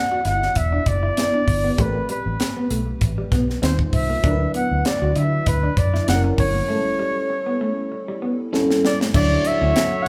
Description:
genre	polished 1980s jazz-funk pop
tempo	98 BPM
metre	4/4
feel	swing 54% on 16ths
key	D major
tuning	A4 = 437 Hz
part	breathy flugelhorn	melody	0.0-10.1 s	B4 to F#5	-26 LUFS	equal	none
part	FM electric piano with soft pad layer	accompaniment	0.0-10.1 s	F#3 to E5	-28 LUFS	equal	chorus, phaser
part	electric guitar at the edge of break-up	riff	0.1-9.7 s	G3 to F#4	-30 LUFS	equal	none
part	crisp fusion drum kit	drums	0.2-9.9 s	crash cymbal, hi-hat, kick drum, snare drum	-26 LUFS	equal	none
part	vintage muted fingered electric bass	bass	0.3-9.7 s	E1 to D3	-25 LUFS	equal	none
part	warm horn section	second line	9.1-10.1 s	A3 to C#5	-30 LUFS	equal	none
room	wet large studio reverb, RT60 1.4 s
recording	band playing live in one room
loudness	-20 LUFS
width	mono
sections	0.0-9.1 A section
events	break 6.7-9.1; drum fill 8.5-9.1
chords	0.0 Em7; 1.8 Am9; 3.6 Eb69; 4.2 D69; 6.1 F#7; 6.7 A7; 9.1 Dmaj9

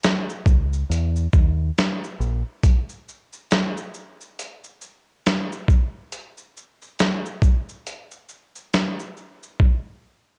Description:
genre	lo-fi hip hop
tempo	69 BPM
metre	4/4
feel	swing 59% on 16ths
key	unclear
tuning	A4 = 440 Hz
part	dusty soul sampler-style drum kit	drums	0.0-9.8 s	hi-hat, kick drum, shaker, snare drum	-22 LUFS	equal	overdrive, vintage 12-bit sampler grit
part	deep dub fingered electric bass	bass	0.5-2.4 s	A#1 to E2	-24 LUFS	equal	none
room	little or no reverb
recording	cassette tape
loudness	-22 LUFS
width	mono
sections	0.0-9.6 A section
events	break 7.9-9.6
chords	none

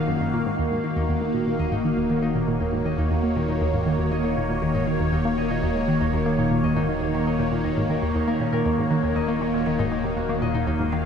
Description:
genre	ambient, sequencer-driven space music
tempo	119 BPM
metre	4/4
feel	straight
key	Eb minor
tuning	A4 = 440 Hz
part	evolving wavetable pad	sustained chords	0.0-11.1 s	Eb3 to F5	-24 LUFS	equal	phaser, built-in reverb
part	concert harp	arpeggios	0.0-11.1 s	Eb3 to Eb5	-30 LUFS	left 5 dB	auto-pan, analog delay
part	fat analog bass	bass	0.0-11.1 s	Eb1	-34 LUFS	equal	none
part	analog pluck	riff	0.1-11.0 s	Eb2 to Bb3	-26 LUFS	right 1 dB	chorus, analog delay
room	wet huge ambient reverb, RT60 7.3 s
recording	dark, warm production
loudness	-21 LUFS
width	side -7 dB against mid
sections	0.0-11.1 A section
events	fade-in on harp 0.0-11.1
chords	0.0 Ebm7

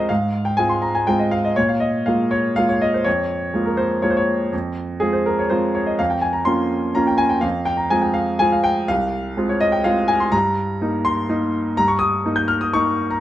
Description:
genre	classical, piano waltz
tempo	123 BPM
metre	3/4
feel	rubato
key	F minor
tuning	A4 = 440 Hz
part	clear baby grand piano	solo	0.0-13.2 s	C2 to G6	-17 LUFS	equal	none
room	light reverb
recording	dark, warm production, nothing above 10.5 kHz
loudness	-17 LUFS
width	side -13 dB against mid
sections	0.0-13.2 A section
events	none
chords	0.1 Fm/Ab; 1.6 Bbm7; 6.0 Bbm/F; 7.4 Fm; 10.3 Eb/G

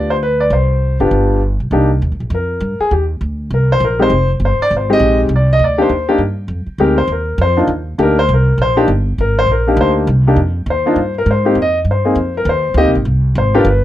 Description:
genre	jazz piano trio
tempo	201 BPM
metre	4/4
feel	swing 62% on 8ths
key	C minor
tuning	A4 = 440 Hz
part	warm grand piano	melody	0.0-13.8 s	Ab3 to Eb5	-14 LUFS	left 1 dB	none
part	upright bass	bass	0.0-13.8 s	F1 to Ab2	-15 LUFS	equal	none
room	light reverb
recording	dry, close 1970s-style studio recording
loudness	-12 LUFS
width	side -13 dB against mid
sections	0.0-1.7 A section; 1.7-13.8 B section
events	grand piano solo 1.7-13.8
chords	0.0 G7; 0.5 C5; 1.1 G7; 1.7 Cm7; 4.1 Fm7; 5.3 Cm; 6.5 F7(no3); 7.7 Cm7; 11.3 Abmaj7

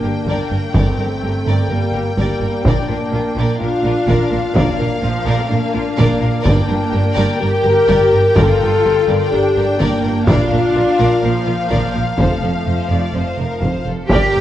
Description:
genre	cinematic, epic orchestral film score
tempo	126 BPM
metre	4/4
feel	straight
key	G minor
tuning	A4 = 440 Hz
part	rich symphonic violin section	melody	0.0-14.4 s	F5 to G5	-26 LUFS	left 4 dB	none
part	rich symphonic violin section	second line	0.0-14.4 s	F4 to Bb5	-25 LUFS	left 2 dB	none
part	rich symphonic viola section	accompaniment	0.0-14.4 s	F3 to D5	-23 LUFS	right 1 dB	none
part	mellow French horn section	sustained chords	0.0-14.4 s	A3 to Bb4	-19 LUFS	left 3 dB	none
part	clear symphonic cello section	bass	0.0-14.4 s	F2 to G4	-21 LUFS	right 2 dB	none
part	rich symphonic double bass section	bass	0.0-14.4 s	F1 to Bb1	-21 LUFS	right 2 dB	none
part	taiko ensemble	drums	0.3-14.4 s	none	-18 LUFS	equal	none
room	wet scoring stage reverb, RT60 1.9 s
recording	worn, warbling old tape, cassette tape, warbly pitch drift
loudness	-13 LUFS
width	side -12 dB against mid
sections	0.0-14.1 A section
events	none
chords	0.0 Gm; 2.7 Bb; 6.5 Gm; 10.3 Bb; 12.2 F

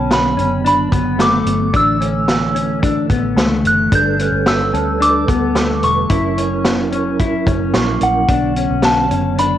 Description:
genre	dream pop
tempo	110 BPM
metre	4/4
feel	straight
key	unclear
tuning	A4 = 439 Hz
part	soft synth bell	melody	0.0-9.6 s	F#5 to G6	-18 LUFS	equal	chorus, tape echo
part	mellow tonewheel organ	sustained chords	0.0-9.6 s	D3 to B4	-20 LUFS	right 7 dB	chorus vibrato, fast rotary speaker, cassette tape, plate reverb
part	mellow electric guitar	arpeggios	0.0-9.6 s	A3 to E4	-21 LUFS	left 8 dB	lush chorus, cassette tape, tape echo, plate reverb
part	vintage muted fingered electric bass	bass	0.0-9.6 s	E1 to D2	-22 LUFS	equal	none
part	large celesta	texture	0.0-8.5 s	A5 to C#6	-30 LUFS	right 9 dB	cassette tape, tape echo
part	vintage drum kit	drums	0.1-9.5 s	hi-hat, kick drum, snare drum	-19 LUFS	equal	none
room	moderate booth ambience, RT60 0.2 s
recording	home recording on cassette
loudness	-13 LUFS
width	side -11 dB against mid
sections	0.0-9.6 A section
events	none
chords	0.0 Bm; 1.7 Asus4; 3.9 Gadd9; 6.1 F#7; 8.3 Bm

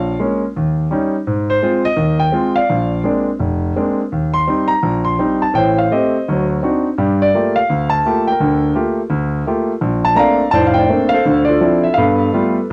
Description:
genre	solo jazz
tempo	168 BPM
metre	4/4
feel	swing 65% on 8ths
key	G minor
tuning	A4 = 440 Hz
part	clear concert grand piano	solo	0.0-12.7 s	F1 to C6	-16 LUFS	equal	cassette tape
room	moderate booth ambience, RT60 0.3 s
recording	home recording on cassette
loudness	-16 LUFS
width	mono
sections	0.0-9.8 A section; 9.8-12.7 B section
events	none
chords	0.0 Bbm7; 0.5 Eb7; 1.2 Ab6; 2.7 Bb9; 4.1 Eb6; 5.5 Am7b5; 6.3 D7b9; 7.0 Gm9; 9.8 Bbmaj9; 11.3 Dm9; 12.0 G9

